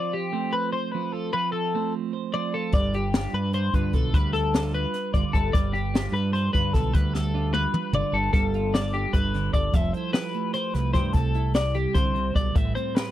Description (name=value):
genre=math rock and midwest emo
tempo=300 BPM (eighths)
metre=7/8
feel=straight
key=unclear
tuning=A4 = 440 Hz
part: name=twelve-string electric guitar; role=accompaniment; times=0.0-13.1 s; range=A2 to C5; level=-30 LUFS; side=right 8 dB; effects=spring reverb
part: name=twelve-string electric guitar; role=arpeggios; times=0.0-13.1 s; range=G4 to E5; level=-28 LUFS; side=left 4 dB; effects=lush chorus
part: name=growling fingered electric bass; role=bass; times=2.7-12.7 s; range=F1 to G2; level=-27 LUFS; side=equal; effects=overdrive
part: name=jazz brush drum kit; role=drums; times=2.7-13.1 s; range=hi-hat, kick drum, snare drum, toms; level=-24 LUFS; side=equal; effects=none
room=little or no reverb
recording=dry, close 1970s-style studio recording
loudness=-22 LUFS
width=side -13 dB against mid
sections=0.0-8.3 A section; 8.3-13.1 B section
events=drum fill 7.1-8.3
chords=0.0 Dm7/F; 2.7 G7; 8.3 G9; 9.7 Fmaj9; 11.2 C69; 12.6 Am9